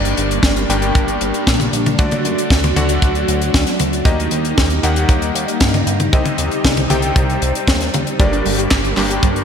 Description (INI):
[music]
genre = italo disco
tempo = 116 BPM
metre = 4/4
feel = straight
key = G harmonic minor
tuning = A4 = 440 Hz
[part]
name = phased string machine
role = sustained chords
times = 0.0-9.4 s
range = F#3 to Eb4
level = -21 LUFS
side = equal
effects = ensemble chorus, phaser
[part]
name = bright electric grand piano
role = stabs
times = 0.0-9.4 s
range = G2 to G5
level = -22 LUFS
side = left 2 dB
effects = ping-pong delay
[part]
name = chorused synth bass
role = bass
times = 0.0-9.4 s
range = G1 to G2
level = -21 LUFS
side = equal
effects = none
[part]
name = tight funk drum kit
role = drums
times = 0.1-9.4 s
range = handclaps, hi-hat, snare drum, toms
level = -20 LUFS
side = left 1 dB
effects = gated reverb
[part]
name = kick drum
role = drums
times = 0.4-9.3 s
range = none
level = -16 LUFS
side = equal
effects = none
[part]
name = analog pluck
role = arpeggios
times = 8.2-9.4 s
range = G3 to G4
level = -24 LUFS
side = right 2 dB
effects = chorus, ping-pong delay
[sound]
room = moderate lush hall reverb, RT60 2.3 s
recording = bright 1980s-style digital production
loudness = -13 LUFS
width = side -7 dB against mid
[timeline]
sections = 0.0-9.4 A section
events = none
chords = 0.0 Gm; 2.0 D; 4.1 Eb; 6.1 Cm; 8.2 Gm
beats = 0.44 0.95 1.47 | 1.99 2.51 3.02 3.54 | 4.06 4.58 5.09 5.61 | 6.13 6.64 7.16 7.68 | 8.20 8.71 9.23